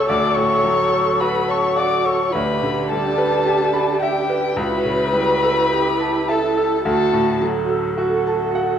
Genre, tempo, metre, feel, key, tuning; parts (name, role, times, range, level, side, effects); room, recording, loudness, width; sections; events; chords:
classical, slow romantic movement for piano quintet; 53 BPM; 4/4; rubato; D major; A4 = 440 Hz
muted violin; melody; 0.0-7.4 s; G5 to D6; -22 LUFS; left 6 dB
muted cello; second line; 0.0-8.8 s; D4 to A4; -24 LUFS; right 6 dB
muted violin; second line; 0.0-7.4 s; G4 to D5; -23 LUFS; left 1 dB
bright grand piano; accompaniment; 0.0-8.8 s; C#2 to B5; -22 LUFS; left 1 dB
muted viola; accompaniment; 0.0-8.8 s; E4 to A4; -25 LUFS; right 4 dB
wet recital hall reverb, RT60 1.6 s; -16 LUFS; side -8 dB against mid
0.0-8.8 A section
0.1 D; 2.3 Em7/D; 4.6 A7/C#; 6.9 D